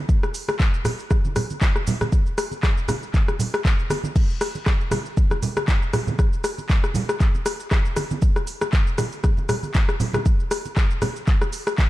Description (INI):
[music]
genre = house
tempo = 118 BPM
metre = 4/4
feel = swing 56% on 16ths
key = none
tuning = none
[part]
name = afro-pop drum kit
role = drums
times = 0.1-11.9 s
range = crash cymbal, handclaps, hi-hat, rim click, shaker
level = -26 LUFS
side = left 1 dB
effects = studio reverb
[part]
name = electronic kick drum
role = drums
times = 0.1-11.9 s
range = none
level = -19 LUFS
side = equal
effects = studio reverb
[part]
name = congas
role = percussion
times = 0.1-11.9 s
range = none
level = -27 LUFS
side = right 3 dB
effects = none
[sound]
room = little or no reverb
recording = dark, warm production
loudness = -19 LUFS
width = side -16 dB against mid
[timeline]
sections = 0.0-11.9 A section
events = none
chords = none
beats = | 0.09 0.60 1.11 1.61 | 2.12 2.63 3.14 3.65 | 4.16 4.67 5.17 5.68 | 6.19 6.70 7.21 7.72 | 8.22 8.73 9.24 9.75 | 10.26 10.77 11.28 11.78